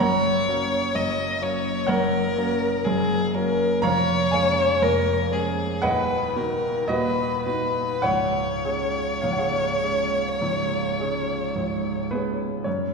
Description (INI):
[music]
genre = classical, romantic duo for violin and grand piano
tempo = 50-65 BPM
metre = 4/4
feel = rubato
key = unclear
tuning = A4 = 445 Hz
[part]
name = warm violin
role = melody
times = 0.0-12.1 s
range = G#4 to D#5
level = -24 LUFS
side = left 1 dB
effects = none
[part]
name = warm baby grand piano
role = accompaniment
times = 0.0-12.9 s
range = C#1 to A#5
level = -24 LUFS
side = right 1 dB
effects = none
[sound]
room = wet concert hall reverb, RT60 2.0 s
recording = heard from further back in the room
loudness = -21 LUFS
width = side -4 dB against mid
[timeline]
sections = 0.0-12.7 A section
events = none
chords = 0.0 F#; 3.9 C#/E#; 5.8 B/D#; 8.1 C#